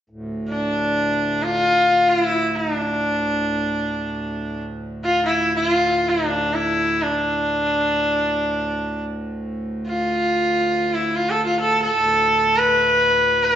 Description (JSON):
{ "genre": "indian classical", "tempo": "free time", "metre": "none", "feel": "none", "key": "D raga shivaranjani", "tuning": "A4 = 439 Hz", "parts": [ { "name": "pedal harmonium", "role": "drone", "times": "0.1-13.6 s", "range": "D2 to A2", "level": "-28 LUFS", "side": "right 1 dB", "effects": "none" }, { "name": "bright sarangi", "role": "melody", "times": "0.5-13.6 s", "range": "D4 to B4", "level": "-18 LUFS", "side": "equal", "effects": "none" } ], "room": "wet recital hall reverb, RT60 1.3 s", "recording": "recorded in a church or concert hall, nothing above 7.6 kHz", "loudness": "-18 LUFS", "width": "side -10 dB against mid", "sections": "0.1-13.6 A section", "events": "none", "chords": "none" }